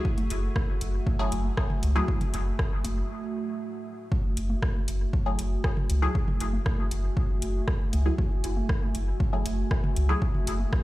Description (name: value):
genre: dub techno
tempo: 118 BPM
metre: 4/4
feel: straight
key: F# minor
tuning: A4 = 440 Hz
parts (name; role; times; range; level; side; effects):
- deep dark ambient pad; sustained chords; 0.0-10.8 s; A3 to G#5; -36 LUFS; right 2 dB; chorus, built-in reverb, sidechain pumping
- filtered dub chord stab; stabs; 0.0-10.8 s; F#3 to G#4; -34 LUFS; left 1 dB; chorus, phaser, sidechain pumping, dub echo
- electronic kick drum; drums; 0.0-10.8 s; none; -27 LUFS; equal; overdrive, studio reverb
- deep house drum kit; drums; 0.2-10.8 s; hi-hat, rim click; -36 LUFS; equal; overdrive, studio reverb
- electronic congas and toms; percussion; 0.2-10.7 s; none; -37 LUFS; right 2 dB; sidechain pumping on perc, studio reverb, sidechain pumping on toms, dub echo
- soft dub sub bass; bass; 0.3-10.7 s; F#1 to C#2; -27 LUFS; equal; sidechain pumping
room: digital ambience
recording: played on a big sound system in a bare room, stone room reverb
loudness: -25 LUFS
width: side -17 dB against mid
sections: 0.0-4.1 A section; 4.1-10.8 A section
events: break 3.1-4.1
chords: 0.0 F#m9